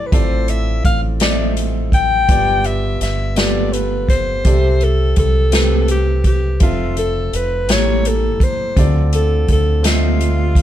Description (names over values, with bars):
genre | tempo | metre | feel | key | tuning
slow gospel | 56 BPM (dotted quarters) | 6/8 | straight | unclear | A4 = 441 Hz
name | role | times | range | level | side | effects
clear alto saxophone | melody | 0.0-10.6 s | F4 to G5 | -20 LUFS | left 2 dB | none
warm concert grand piano | accompaniment | 0.0-10.6 s | G2 to E5 | -23 LUFS | equal | none
deep dub fingered electric bass | bass | 0.1-10.6 s | F1 to D2 | -17 LUFS | equal | none
swinging big-band drum kit | drums | 0.1-10.6 s | hi-hat, kick drum, snare drum | -18 LUFS | equal | none
room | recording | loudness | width
light reverb | band playing live in one room | -13 LUFS | side -11 dB against mid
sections
0.0-10.6 A section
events
none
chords
0.1 Dm7/A; 2.3 G7; 4.5 C6; 6.6 Fmaj7; 7.7 A7b9; 8.8 Dm7